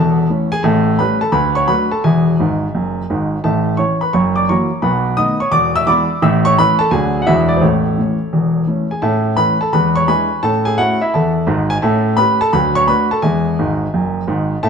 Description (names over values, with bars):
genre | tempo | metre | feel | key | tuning
jazz, stride piano | 172 BPM | 4/4 | swing 65% on 8ths | A major | A4 = 438 Hz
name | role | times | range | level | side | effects
warm grand piano | solo | 0.0-14.7 s | E1 to E6 | -13 LUFS | equal | none
room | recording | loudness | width
moderate echo chamber reverb, RT60 1.8 s | dark, warm production | -13 LUFS | side -6 dB against mid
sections
0.0-9.0 A section; 9.0-14.7 A section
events
grand piano fill 2.4-3.4, 13.6-14.6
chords
0.0 A; 0.6 A7; 1.3 Dmaj7; 2.0 E; 3.4 A; 4.1 F#7; 4.8 B7; 5.5 E7; 6.2 A; 6.9 D; 7.3 E9; 7.6 A; 9.7 E7; 10.4 A; 11.8 A7; 12.5 Dmaj7; 13.2 E